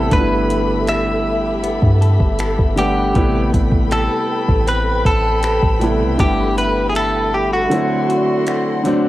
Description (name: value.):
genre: contemporary R&B.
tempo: 79 BPM.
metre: 4/4.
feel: straight.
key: G major.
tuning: A4 = 440 Hz.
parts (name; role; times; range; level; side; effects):
direct-recorded clean electric guitar; melody; 0.0-8.8 s; F#4 to E5; -19 LUFS; equal; cassette tape, tape echo.
clear grand piano; accompaniment; 0.0-9.1 s; C3 to F#5; -20 LUFS; equal; none.
dark studio string section; sustained chords; 0.0-9.1 s; G4 to C6; -24 LUFS; left 1 dB; none.
direct-recorded clean electric guitar; arpeggios; 0.0-9.1 s; D3 to B4; -28 LUFS; left 4 dB; spring reverb.
soft 808-style bass; bass; 0.0-7.7 s; G1 to G2; -19 LUFS; equal; none.
smooth R&B drum kit; drums; 0.1-9.0 s; finger snaps, hi-hat, kick drum; -20 LUFS; equal; cassette tape.
room: little or no reverb.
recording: home recording on cassette.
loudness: -14 LUFS.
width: side -15 dB against mid.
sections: 0.0-9.1 A section.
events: kick muted 7.7-9.1.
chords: 0.1 G69; 3.2 Am9; 6.2 G69; 7.7 D7.